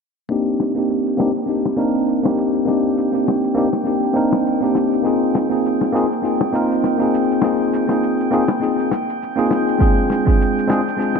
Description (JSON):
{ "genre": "sunset chillout", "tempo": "101 BPM", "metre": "4/4", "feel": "swing 56% on 16ths", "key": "C minor", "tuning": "A4 = 440 Hz", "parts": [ { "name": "bell-like tine electric piano", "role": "accompaniment", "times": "0.3-11.2 s", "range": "Ab3 to Bb4", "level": "-16 LUFS", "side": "left 1 dB", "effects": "auto-pan, low-pass filter, digital delay" }, { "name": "cabasa", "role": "drums", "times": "0.3-11.1 s", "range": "none", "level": "-45 LUFS", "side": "left 1 dB", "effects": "none" }, { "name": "drifting glass-harmonics texture", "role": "texture", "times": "1.2-11.2 s", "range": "G5", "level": "-28 LUFS", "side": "right 4 dB", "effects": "chorus, built-in reverb" }, { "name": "bongos", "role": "percussion", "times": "0.6-11.2 s", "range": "none", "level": "-27 LUFS", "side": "left 5 dB", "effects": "none" }, { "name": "electronic kick drum", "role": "drums", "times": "9.8-10.4 s", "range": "none", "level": "-16 LUFS", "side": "right 1 dB", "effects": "studio reverb" } ], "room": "wet plate reverb, RT60 2.4 s", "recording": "bright 1980s-style digital production, low-pass filter", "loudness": "-16 LUFS", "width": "side -5 dB against mid", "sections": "0.3-11.2 A section", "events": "filter sweep on tine electric piano 0.3-11.2; filter sweep 0.3-11.2", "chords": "0.3 Cm9; 5.1 Bb9sus4; 9.8 Dm7b5" }